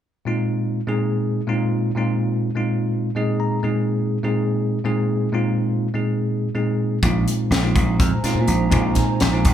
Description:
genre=electric jazz fusion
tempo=248 BPM (eighths)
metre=7/8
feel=straight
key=unclear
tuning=A4 = 440 Hz
part: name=bell-like tine electric piano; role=accompaniment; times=0.3-9.5 s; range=Bb2 to Bb5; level=-20 LUFS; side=equal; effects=fast stereo tremolo
part: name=dark analog pad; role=sustained chords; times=7.8-9.5 s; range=Eb4 to Bb5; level=-28 LUFS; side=right 4 dB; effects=chorus
part: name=slap bass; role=bass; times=7.0-9.5 s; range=Bb1 to Bb2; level=-20 LUFS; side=right 1 dB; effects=none
part: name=crisp fusion drum kit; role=drums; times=7.0-9.5 s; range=hi-hat, kick drum, snare drum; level=-21 LUFS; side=left 1 dB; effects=none
room=light reverb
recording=band playing live in one room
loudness=-18 LUFS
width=side -10 dB against mid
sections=0.3-9.5 A section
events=tine electric piano fill 2.9-3.6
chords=0.3 Bb9sus4

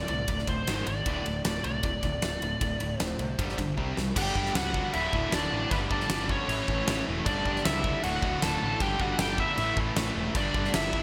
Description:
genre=hard rock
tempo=155 BPM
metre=4/4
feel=straight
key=unclear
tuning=A4 = 438 Hz
part: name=biting lead guitar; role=melody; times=0.0-11.0 s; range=B4 to A5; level=-34 LUFS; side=equal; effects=overdrive, delay
part: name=overdriven semi-hollow guitar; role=riff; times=0.0-11.0 s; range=D2 to C4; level=-40 LUFS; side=equal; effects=none
part: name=tight distorted guitar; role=riff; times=0.0-11.0 s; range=D2 to C4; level=-37 LUFS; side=equal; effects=distortion
part: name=fuzz picked electric bass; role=bass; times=0.0-11.0 s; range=D1 to C#2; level=-37 LUFS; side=equal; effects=overdrive
part: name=huge arena drum kit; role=drums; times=0.1-11.0 s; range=crash cymbal, kick drum, ride cymbal, snare drum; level=-34 LUFS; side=equal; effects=gated reverb
part: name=nasal lead guitar with a parked wah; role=second line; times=4.2-11.0 s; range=B3 to A4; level=-39 LUFS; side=equal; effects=overdrive
part: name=biting overdriven guitar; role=riff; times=4.2-11.0 s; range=D2 to A3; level=-40 LUFS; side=equal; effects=none
room=moderate lush hall reverb, RT60 1.9 s, small room ambience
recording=bright 1980s-style digital production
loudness=-28 LUFS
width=mono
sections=0.0-4.2 A section; 4.2-11.0 B section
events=drum fill 3.8-4.2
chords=0.0 D5; 0.7 G#5; 1.1 D5; 3.4 G5; 3.8 C5; 4.2 G5; 4.9 D5; 5.7 G5; 6.5 A; 7.3 G5; 8.0 D; 8.8 G5; 9.6 A5; 10.4 G5

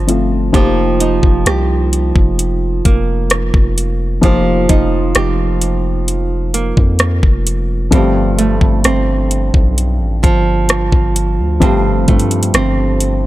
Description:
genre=contemporary R&B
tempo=65 BPM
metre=4/4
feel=straight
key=unclear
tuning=A4 = 440 Hz
part: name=felt-muted upright piano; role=accompaniment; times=0.0-13.3 s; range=F3 to G4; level=-20 LUFS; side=left 3 dB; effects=none
part: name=nylon-string guitar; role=arpeggios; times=0.0-13.3 s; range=G2 to G4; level=-18 LUFS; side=right 4 dB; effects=tape echo
part: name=long sustained 808-style bass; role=bass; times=0.0-13.3 s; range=F1 to G2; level=-16 LUFS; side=equal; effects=none
part: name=smooth R&B drum kit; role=drums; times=0.1-13.2 s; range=hi-hat, kick drum, rim click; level=-13 LUFS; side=equal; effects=none
room=little or no reverb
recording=dry, gritty hardware recording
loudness=-11 LUFS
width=side -16 dB against mid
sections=0.0-13.3 A section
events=none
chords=0.0 G9sus4; 0.5 F9sus4; 7.9 G9sus4

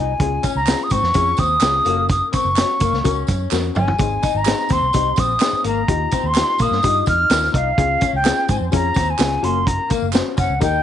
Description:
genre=uptempo 1960s-style soul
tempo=127 BPM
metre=4/4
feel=straight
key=unclear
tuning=A4 = 437 Hz
part: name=concert flute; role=melody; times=0.0-10.8 s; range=F5 to F6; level=-19 LUFS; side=equal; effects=none
part: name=electric guitar through a small old amp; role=riff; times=0.0-10.8 s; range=Bb3 to Eb4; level=-26 LUFS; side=left 11 dB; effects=none
part: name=vintage muted fingered electric bass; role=bass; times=0.0-10.8 s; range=Gb1 to Bb2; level=-23 LUFS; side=right 2 dB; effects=none
part: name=dark upright piano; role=accompaniment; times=0.2-10.8 s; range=C4 to Db5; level=-26 LUFS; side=left 10 dB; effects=none
part: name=vintage drum kit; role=drums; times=0.2-10.7 s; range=hi-hat, kick drum, snare drum, toms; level=-20 LUFS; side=right 2 dB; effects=none
part: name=tambourine and handclaps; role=percussion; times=0.4-10.7 s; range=none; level=-32 LUFS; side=right 14 dB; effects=none
room=moderate plate reverb, RT60 1.2 s, small room ambience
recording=1960s-style stereo with parts hard left and right, nothing above 11.0 kHz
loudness=-16 LUFS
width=side -10 dB against mid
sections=0.0-10.8 A section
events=drum fill 3.5-4.0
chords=0.2 Db; 1.9 Gb; 4.0 Ab; 5.9 Ebadd9; 7.8 Db; 9.4 Gb

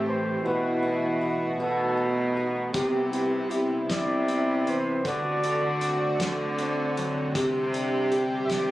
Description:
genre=acoustic folk-pop ballad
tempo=52 BPM (dotted quarters)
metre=6/8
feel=straight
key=unclear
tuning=A4 = 440 Hz
part: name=breathy flugelhorn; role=melody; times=0.0-8.7 s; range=A4 to E5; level=-30 LUFS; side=equal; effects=none
part: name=mellow French horn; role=second line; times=0.0-8.7 s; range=E4 to G4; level=-30 LUFS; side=right 2 dB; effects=none
part: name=fingerpicked steel-string acoustic guitar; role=accompaniment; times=0.0-8.7 s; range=A2 to C5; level=-31 LUFS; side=left 1 dB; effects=none
part: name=lush unison pad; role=sustained chords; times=0.0-8.7 s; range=C3 to G4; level=-33 LUFS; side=equal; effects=chorus
part: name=warm cello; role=bass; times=0.0-8.7 s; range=A2 to D3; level=-29 LUFS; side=equal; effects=none
part: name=loose indie drum kit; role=drums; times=2.7-8.7 s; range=hi-hat, kick drum, snare drum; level=-33 LUFS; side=equal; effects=none
room=little or no reverb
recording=recorded on a phone in the room, studio ambience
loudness=-24 LUFS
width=side -16 dB against mid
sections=0.0-8.7 A section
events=none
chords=0.5 B7sus4; 1.6 B7; 2.8 Cmaj7; 5.1 D7; 7.4 Csus2

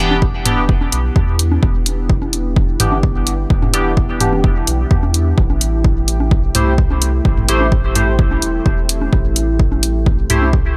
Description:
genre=dub techno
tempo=128 BPM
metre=4/4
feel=straight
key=E minor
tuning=A4 = 440 Hz
part: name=deep dark ambient pad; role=sustained chords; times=0.4-10.8 s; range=A3 to G4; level=-27 LUFS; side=equal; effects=chorus, built-in reverb, sidechain pumping
part: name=resonant sweep polysynth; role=stabs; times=0.0-10.5 s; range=E3 to C5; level=-23 LUFS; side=equal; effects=chorus, phaser, sidechain pumping, dub echo
part: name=warm sub bass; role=bass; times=0.0-10.8 s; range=E1 to E2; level=-21 LUFS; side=equal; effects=sidechain pumping
part: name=electronic congas and toms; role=percussion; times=0.1-10.5 s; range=none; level=-26 LUFS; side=equal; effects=sidechain pumping on perc, sidechain pumping on toms, dub echo
part: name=electronic kick drum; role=drums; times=0.2-10.6 s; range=none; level=-18 LUFS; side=equal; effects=none
part: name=electronic hi-hat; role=drums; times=0.5-10.4 s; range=none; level=-20 LUFS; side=equal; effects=none
room=little or no reverb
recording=none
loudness=-15 LUFS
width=mono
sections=0.0-10.8 A section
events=filter sweep on analog polysynth 0.0-10.8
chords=0.0 Em7; 5.4 Am7

